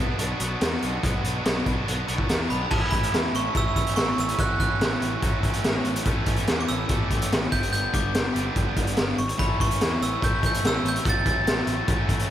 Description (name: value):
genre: indie rock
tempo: 144 BPM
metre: 4/4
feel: straight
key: unclear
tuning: A4 = 439 Hz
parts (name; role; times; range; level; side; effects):
- high-gain distorted guitar; riff; 0.0-12.3 s; G2 to A4; -29 LUFS; right 1 dB; distortion
- fuzz picked electric bass; bass; 0.0-12.2 s; G1 to E2; -30 LUFS; equal; overdrive
- raw garage drum kit; drums; 0.2-12.3 s; crash cymbal, hi-hat, kick drum, snare drum; -24 LUFS; equal; none
- glockenspiel with brass mallets; melody; 2.5-11.7 s; A5 to A6; -29 LUFS; right 1 dB; slapback echo
room: moderate lush hall reverb, RT60 1.6 s, studio reverb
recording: big arena sound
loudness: -22 LUFS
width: side -11 dB against mid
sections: 0.0-2.7 A section; 2.7-12.3 B section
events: none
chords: 0.0 Bm; 2.7 Aadd9; 4.4 F#m/A; 6.1 A; 7.5 G; 9.4 A; 11.1 F#m/A